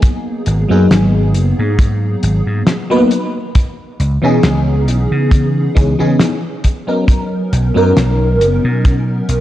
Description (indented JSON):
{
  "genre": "vaporwave",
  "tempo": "68 BPM",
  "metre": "4/4",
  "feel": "swing 54% on 16ths",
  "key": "C# dorian",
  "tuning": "A4 = 440 Hz",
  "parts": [
    { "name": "FM electric piano with soft pad layer", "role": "accompaniment", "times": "0.0-9.4 s", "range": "E3 to B4", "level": "-15 LUFS", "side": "equal", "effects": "phaser, ensemble chorus, tape echo" },
    { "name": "damped 70s drum kit", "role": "drums", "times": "0.0-9.4 s", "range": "hi-hat, snare drum", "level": "-18 LUFS", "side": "left 1 dB", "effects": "studio reverb" },
    { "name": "kick drum", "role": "drums", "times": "0.0-9.0 s", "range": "none", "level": "-11 LUFS", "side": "equal", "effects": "studio reverb" },
    { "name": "vintage slap bass", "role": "bass", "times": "0.5-9.4 s", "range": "F#1 to C#3", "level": "-14 LUFS", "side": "equal", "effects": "none" }
  ],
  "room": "light reverb, small room ambience",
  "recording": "dark, warm production, cassette tape",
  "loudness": "-11 LUFS",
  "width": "side -13 dB against mid",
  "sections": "0.0-9.4 A section",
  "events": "none",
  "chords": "0.0 G#m9; 3.6 C#m9; 7.1 Bmaj9"
}